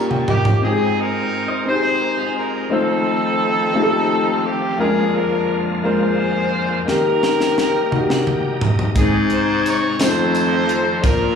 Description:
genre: slow gospel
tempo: 58 BPM (dotted quarters)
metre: 6/8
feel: straight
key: Ab major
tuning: A4 = 440 Hz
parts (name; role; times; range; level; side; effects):
- dark upright piano; accompaniment; 0.0-11.4 s; Ab2 to Bb5; -20 LUFS; left 4 dB; slapback echo
- dark chamber string section; sustained chords; 0.0-0.6 s; Eb5 to Db6; -40 LUFS; left 1 dB; none
- warm baritone saxophone; bass; 0.0-0.6, 9.0-11.4 s; F2 to Bb2; -21 LUFS; left 1 dB; none
- crisp fusion drum kit; drums; 0.1-0.6, 6.9-11.2 s; hi-hat, kick drum, snare drum, toms; -20 LUFS; right 1 dB; none
- warm horn section; melody; 0.3-11.4 s; C4 to Db5; -20 LUFS; equal; slapback echo
- bright tonewheel organ; sustained chords; 0.6-11.4 s; F2 to G5; -26 LUFS; right 3 dB; slow rotary speaker, chorus vibrato
- clean electric guitar; second line; 1.5-2.7 s; F4 to Eb5; -30 LUFS; right 4 dB; slapback echo
- tambourine; percussion; 9.0-11.4 s; none; -34 LUFS; left 2 dB; none
room: light reverb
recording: live gig heard through the venue's PA, club reverb, studio ambience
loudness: -16 LUFS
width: side -6 dB against mid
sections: 0.6-11.4 A section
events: drum fill 0.0-0.6, 6.9-9.0; tonewheel organ fill 7.9-9.0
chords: 0.0 Eb9; 0.6 Ab; 2.7 F7; 4.8 Bb7/F; 6.9 Eb; 9.0 Ab; 10.0 F7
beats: | 0.63 1.67 | 2.71 3.75 | 4.79 5.83 | 6.87 7.91 | 8.95 9.99 | 11.03

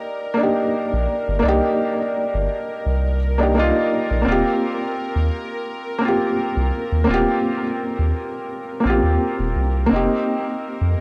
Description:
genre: trip hop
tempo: 85 BPM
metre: 4/4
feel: swing 54% on 16ths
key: unclear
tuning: A4 = 441 Hz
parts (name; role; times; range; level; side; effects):
- felt-muted upright piano; accompaniment; 0.0-11.0 s; Bb3 to G4; -22 LUFS; equal; harmonic tremolo, tape echo
- bowed-like drone; texture; 0.0-11.0 s; Bb4; -34 LUFS; equal; built-in reverb
- soft dub sub bass; bass; 0.9-11.0 s; Eb1 to F2; -23 LUFS; equal; tube saturation
room: light reverb, studio ambience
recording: dry, gritty hardware recording, cassette tape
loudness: -20 LUFS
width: mono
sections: 0.0-11.0 A section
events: none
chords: 0.0 Cm9; 4.3 Eb69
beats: 0.03 0.73 | 1.44 2.15 2.85 3.56 | 4.26 4.97 5.68 6.38 | 7.09 7.79 8.50 9.21 | 9.91 10.62

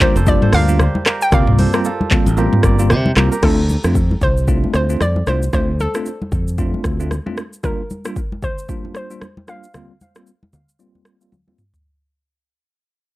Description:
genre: afrobeats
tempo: 114 BPM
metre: 4/4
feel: swing 58% on 16ths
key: D minor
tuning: A4 = 440 Hz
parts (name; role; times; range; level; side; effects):
- hollow square pluck; melody; 0.0-11.3 s; A4 to G5; -22 LUFS; equal; chorus, low-pass filter, tape echo
- bell-like tine electric piano; accompaniment; 0.0-11.6 s; G3 to F4; -21 LUFS; equal; fast stereo tremolo, low-pass filter
- kora; riff; 0.0-4.7 s; F4 to D5; -24 LUFS; right 4 dB; tape echo
- afro-pop drum kit; drums; 0.0-11.8 s; crash cymbal, handclaps, hi-hat, kick drum, rim click, shaker, toms; -18 LUFS; equal; overdrive
- congas; percussion; 0.0-11.6 s; none; -25 LUFS; equal; none
- modern bright fingered electric bass; bass; 0.2-7.2 s; F1 to C3; -17 LUFS; equal; none
room: little or no reverb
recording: dry, gritty hardware recording, cassette tape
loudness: -14 LUFS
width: side -17 dB against mid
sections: 0.0-3.4 A section; 3.4-11.8 B section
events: fade-out 3.4-11.8; filter sweep 3.4-11.8; drum fill 11.3-11.8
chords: 0.0 Gm7; 1.3 C7sus4; 3.4 Dm7; 7.6 Gm7; 9.7 C7sus4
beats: 0.27 0.80 | 1.32 1.85 2.37 2.90 | 3.43 3.95 4.48 5.01 | 5.53 6.06 6.58 7.11 | 7.64 8.16 8.69 9.22 | 9.74 10.27 10.79 11.32

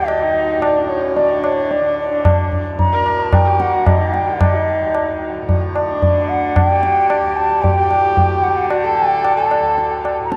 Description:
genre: indian classical, Hindustani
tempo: 112 BPM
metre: 4/4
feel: straight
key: D raga bhairav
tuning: A4 = 443 Hz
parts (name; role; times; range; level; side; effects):
- mellow bansuri; melody; 0.0-10.4 s; C#5 to Bb5; -19 LUFS; equal; none
- rich sarangi; second line; 0.0-10.1 s; C#4 to Bb4+23c; -26 LUFS; equal; none
- tanpura; drone; 0.0-10.4 s; D2 to D3; -29 LUFS; equal; none
- tabla; percussion; 0.1-10.4 s; none; -20 LUFS; equal; none
room: wet huge ambient reverb, RT60 8.1 s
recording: in a vast, echoing space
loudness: -16 LUFS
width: mono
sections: 0.0-10.4 A section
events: none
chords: none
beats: | 0.09 0.63 1.17 1.71 | 2.25 2.80 3.34 3.88 | 4.42 4.95 5.49 6.03 | 6.57 7.10 7.64 8.18 | 8.71 9.25 9.78 10.31

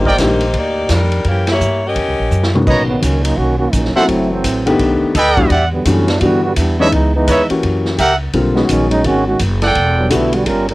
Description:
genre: jazz, big band swing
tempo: 169 BPM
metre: 4/4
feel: swing 63% on 8ths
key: unclear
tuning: A4 = 440 Hz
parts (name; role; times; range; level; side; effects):
- bright saxophone section; melody; 0.0-2.6 s; Fb3 to Eb5; -17 LUFS; left 1 dB; cassette tape
- warm grand piano; accompaniment; 0.0-0.4, 2.5-10.3 s; D3 to G4; -16 LUFS; left 2 dB; cassette tape
- upright bass; bass; 0.0-10.7 s; E1 to G2; -17 LUFS; equal; none
- clear trumpet section; stabs; 0.1, 2.7-10.1 s; G4 to A#5; -14 LUFS; right 1 dB; cassette tape
- swinging big-band drum kit; drums; 0.1-10.7 s; crash cymbal, hi-hat, kick drum, ride cymbal, snare drum, toms; -21 LUFS; equal; cassette tape
- warm trombone section; second line; 2.9-10.7 s; C#3 to A#4; -16 LUFS; right 2 dB; cassette tape
room: light reverb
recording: home recording on cassette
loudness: -12 LUFS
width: side -19 dB against mid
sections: 0.0-2.7 A section; 2.7-10.7 B section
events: band accent 1.4; drum fill 2.3-2.7; trombone section solo 2.7-10.7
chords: 0.0 Ebmaj7; 1.3 Gb7b9; 2.7 Bmaj9; 4.1 F#m7b5; 4.8 B7alt; 5.5 Em9; 6.9 C#m9; 7.6 F#7b9; 8.3 B69; 9.8 Em11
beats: 0.19 0.54 0.90 | 1.25 1.61 1.96 2.32 | 2.67 3.02 3.38 3.73 | 4.09 4.44 4.80 5.15 | 5.50 5.86 6.21 6.57 | 6.92 7.28 7.63 7.99 | 8.34 8.69 9.05 9.40 | 9.76 10.11 10.46

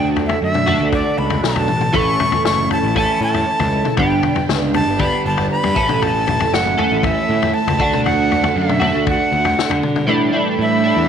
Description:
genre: psychedelic rock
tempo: 118 BPM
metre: 4/4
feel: straight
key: unclear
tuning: A4 = 440 Hz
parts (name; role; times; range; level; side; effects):
- breathy bright jazz flute; melody; 0.0-11.1 s; D5 to C#6; -20 LUFS; equal; tape echo
- phased string machine; sustained chords; 0.0-11.1 s; C#4 to D5; -28 LUFS; right 11 dB; ensemble chorus, phaser
- twelve-string electric guitar; riff; 0.0-11.1 s; G2 to A4; -19 LUFS; right 2 dB; flanger
- fuzz picked electric bass; bass; 0.0-11.1 s; F#1 to D3; -21 LUFS; equal; overdrive, transformer saturation
- vintage drum kit; drums; 0.2-10.1 s; kick drum, snare drum, toms; -22 LUFS; left 6 dB; none
- congas; percussion; 0.5-10.1 s; none; -34 LUFS; left 10 dB; none
room: light reverb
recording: 1960s-style stereo with parts hard left and right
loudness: -14 LUFS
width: side -8 dB against mid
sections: 0.0-10.1 A section; 10.1-11.1 B section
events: none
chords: 0.0 D; 1.9 A; 4.0 G; 5.8 A; 7.8 D; 10.1 A7sus4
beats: 0.42 0.93 1.44 | 1.94 2.45 2.96 3.47 | 3.98 4.49 5.00 5.51 | 6.02 6.52 7.03 7.54 | 8.05 8.56 9.06 9.57 | 10.08 10.59

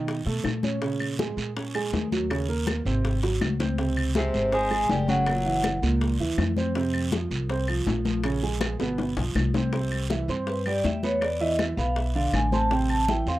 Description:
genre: Afro-Cuban jazz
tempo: 162 BPM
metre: 4/4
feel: straight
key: C major from 9.7 s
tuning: A4 = 440 Hz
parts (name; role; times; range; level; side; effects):
- warm upright piano; accompaniment; 0.0-13.4 s; Bb2 to C6; -29 LUFS; right 4 dB; none
- upright bass; bass; 0.0-13.4 s; Gb1 to B2; -28 LUFS; equal; none
- bongos; percussion; 0.1-13.4 s; none; -35 LUFS; left 5 dB; none
- congas; percussion; 0.1-13.4 s; none; -31 LUFS; left 4 dB; none
- guiro; percussion; 0.1-13.4 s; none; -38 LUFS; right 4 dB; none
- claves; percussion; 0.4-13.1 s; none; -36 LUFS; equal; none
- vibraphone with medium mallets; melody; 4.2-5.8, 10.5-13.4 s; B4 to A5; -26 LUFS; equal; none
- clear tenor saxophone; second line; 4.2-5.8 s; C3 to Ab3; -32 LUFS; left 3 dB; none
room: light reverb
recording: dry, close 1970s-style studio recording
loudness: -23 LUFS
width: side -16 dB against mid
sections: 0.0-9.7 A section; 9.7-13.4 B section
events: drum fill 3.2-3.8, 8.6-9.7; vibraphone solo 9.7-13.4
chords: 0.0 B7; 0.8 Bbm7; 2.3 Eb5; 3.0 Ab7; 3.8 Db5; 5.3 Gb7#11; 6.8 F5; 8.2 Bbm7; 9.0 G7; 9.7 Cmaj7; 11.2 E5; 12.7 Am7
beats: 0.08 0.45 | 0.82 1.19 1.56 1.93 | 2.31 2.68 3.05 3.42 | 3.79 4.16 4.53 4.90 | 5.27 5.64 6.02 6.39 | 6.76 7.13 7.50 7.88 | 8.25 8.62 8.99 9.36 | 9.73 10.11 10.48 10.85 | 11.22 11.60 11.97 12.34 | 12.71 13.09

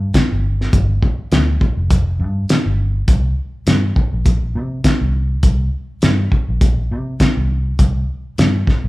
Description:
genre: straight-eighth soul blues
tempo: 102 BPM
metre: 4/4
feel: swing 56% on 16ths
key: unclear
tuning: A4 = 440 Hz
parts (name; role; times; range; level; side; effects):
- vintage muted fingered electric bass; bass; 0.0-8.9 s; F1 to C3; -18 LUFS; equal; none
- cloth-damped thuddy drum kit; drums; 0.1-8.8 s; hi-hat, kick drum, snare drum; -15 LUFS; equal; none
room: moderate large studio reverb, RT60 1.1 s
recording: band playing live in one room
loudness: -14 LUFS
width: side -19 dB against mid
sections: 0.0-8.9 A section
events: none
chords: none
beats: 0.15 | 0.74 1.32 1.91 2.50 | 3.09 3.67 4.26 4.85 | 5.44 6.03 6.62 7.20 | 7.79 8.38

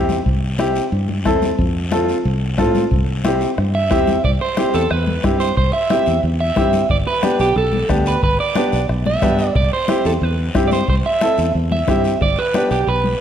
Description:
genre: latin, cumbia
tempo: 181 BPM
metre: 4/4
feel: straight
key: C major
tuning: A4 = 440 Hz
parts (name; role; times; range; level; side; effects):
- bright upright piano; accompaniment; 0.0-12.8 s; B3 to A4; -20 LUFS; left 1 dB; none
- fingered electric bass; bass; 0.0-13.1 s; G1 to A2; -20 LUFS; equal; none
- congas; percussion; 0.1-13.2 s; none; -26 LUFS; left 4 dB; none
- guiro; percussion; 0.1-13.2 s; none; -34 LUFS; left 4 dB; none
- bombo; percussion; 0.3-12.7 s; none; -23 LUFS; equal; none
- electric guitar at the edge of break-up; second line; 3.7-13.2 s; G4 to E5; -19 LUFS; right 4 dB; none
room: moderate large studio reverb, RT60 1.5 s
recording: lossy compression artefacts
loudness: -15 LUFS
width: side -9 dB against mid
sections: 0.0-4.2 A section; 4.2-13.2 B section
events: clean electric guitar solo 4.2-13.2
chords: 0.0 C; 1.6 F; 2.9 C; 6.9 G; 9.6 C; 12.2 G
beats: | 0.26 0.59 0.93 1.26 | 1.59 1.92 2.25 2.58 | 2.92 3.25 3.58 3.91 | 4.24 4.58 4.91 5.24 | 5.57 5.90 6.24 6.57 | 6.90 7.23 7.56 7.89 | 8.23 8.56 8.89 9.22 | 9.55 9.89 10.22 10.55 | 10.88 11.22 11.55 11.88 | 12.21 12.55 12.88

